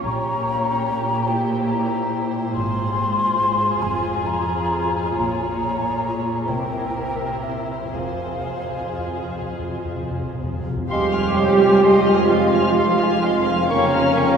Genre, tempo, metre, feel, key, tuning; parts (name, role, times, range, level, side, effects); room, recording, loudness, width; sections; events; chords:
classical, slow romantic movement for symphony orchestra; 39-49 BPM (dotted quarters); 6/8; rubato; F minor; A4 = 440 Hz
muted studio violin section; melody; 0.0-14.4 s; C5 to F5; -30 LUFS; left 4 dB
mellow hollow concert flute; second line; 0.0-14.4 s; Db5 to C6; -25 LUFS; left 2 dB
muted studio violin section; second line; 0.0-14.4 s; G4 to F6; -29 LUFS; left 1 dB
muted studio viola section; accompaniment; 0.0-14.4 s; Db4 to G4; -23 LUFS; right 2 dB
muted studio double bass section; bass; 0.0-14.4 s; F1 to F2; -32 LUFS; right 3 dB
muted studio cello section; bass; 0.1-14.4 s; F2 to G3; -26 LUFS; right 1 dB
timpani; percussion; 7.9-10.8 s; F2; -32 LUFS; left 1 dB
clear clarinet; second line; 10.9-14.3 s; C6 to Db6; -30 LUFS; equal
warm bassoon; accompaniment; 10.9-14.3 s; Ab3 to Bb3; -28 LUFS; equal
mellow French horn section; sustained chords; 10.9-14.4 s; C4 to F4; -29 LUFS; left 2 dB
mellow trombone section; sustained chords; 10.9-14.4 s; F3 to Bb3; -27 LUFS; right 3 dB
warm trumpet section; stabs; 10.9-14.4 s; Bb5 to C6; -27 LUFS; right 3 dB
warm tuba; bass; 10.9-14.4 s; F1; -27 LUFS; right 2 dB
wet cathedral reverb, RT60 5.2 s; minimal, uncompressed stereo recording; -18 LUFS; side -7 dB against mid
0.0-10.9 A section; 10.9-14.4 B section
timpani fill 8.0-10.9
0.0 Gdim/Bb; 1.3 C7/Bb; 2.6 Fm/Ab; 3.8 Fm; 5.2 Bbm7; 6.5 C7; 8.0 Fm; 13.7 Gm7b5/F